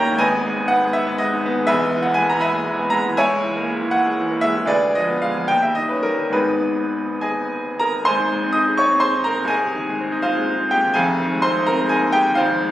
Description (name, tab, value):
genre	classical, romantic character piece for solo piano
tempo	67-88 BPM (dotted quarters)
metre	6/8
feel	rubato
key	G# minor, Ab major from 8.1 s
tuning	A4 = 440 Hz
part	bright baby grand piano	solo	0.0-12.7 s	E1 to Eb6	-17 LUFS	equal	none
room	moderate recital hall reverb, RT60 1.7 s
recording	recorded on a phone in the room, studio reverb, compression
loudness	-17 LUFS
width	side -14 dB against mid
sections	0.0-8.1 A section; 8.1-12.7 B section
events	none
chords	0.2 G#m; 1.7 E; 3.2 A#m7b5/C#; 4.7 Ddim7; 5.5 D#7; 6.4 G#m; 8.1 Ab; 9.5 Ab/C; 11.0 Fm7